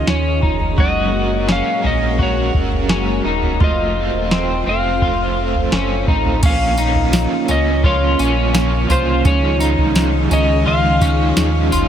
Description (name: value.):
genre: dream pop.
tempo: 85 BPM.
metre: 4/4.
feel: straight.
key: Bb minor.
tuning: A4 = 441 Hz.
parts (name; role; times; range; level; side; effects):
clean lap steel guitar; melody; 0.0-11.3 s; C5 to F5; -22 LUFS; equal; digital delay.
string machine, full ensemble; sustained chords; 0.0-11.9 s; Eb3 to C5; -22 LUFS; equal; phaser, ensemble chorus.
electric guitar at the edge of break-up; arpeggios; 0.0-11.9 s; C4 to Gb4; -22 LUFS; left 2 dB; analog chorus, digital delay.
sub bass with octave; bass; 0.0-11.9 s; Eb1 to Eb2; -20 LUFS; equal; none.
soft vintage rhythm box; drums; 0.1-11.9 s; crash cymbal, kick drum, snare drum, tambourine, toms; -19 LUFS; right 1 dB; none.
overdriven electric guitar; accompaniment; 0.8-11.9 s; Bb2 to Bb4; -23 LUFS; right 4 dB; tremolo, wide subtle chorus.
room: light reverb.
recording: none.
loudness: -14 LUFS.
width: side -9 dB against mid.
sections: 0.0-6.4 A section; 6.4-11.9 B section.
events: none.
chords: 0.0 Dbadd9; 0.8 Gbadd9; 3.6 F; 6.4 Bbm; 9.3 Dbadd9.